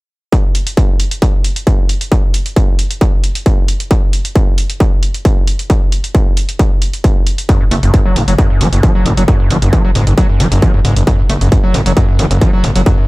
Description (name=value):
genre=driving peak-time techno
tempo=134 BPM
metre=4/4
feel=straight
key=unclear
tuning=A4 = 441 Hz
part: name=electronic hi-hat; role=drums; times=0.3-13.0 s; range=none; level=-22 LUFS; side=right 1 dB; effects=none
part: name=electronic kick drum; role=drums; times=0.3-13.0 s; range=none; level=-11 LUFS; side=equal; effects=distortion
part: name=overdriven acid bass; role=riff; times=7.5-13.1 s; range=F#2 to A3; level=-14 LUFS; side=equal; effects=wide subtle chorus, sidechain pumping, tape echo
part: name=gritty driven synth bass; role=bass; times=7.7-12.8 s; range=F#1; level=-13 LUFS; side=equal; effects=sidechain pumping
room=little or no reverb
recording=none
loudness=-10 LUFS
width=side -22 dB against mid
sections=0.3-13.1 A section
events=none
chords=none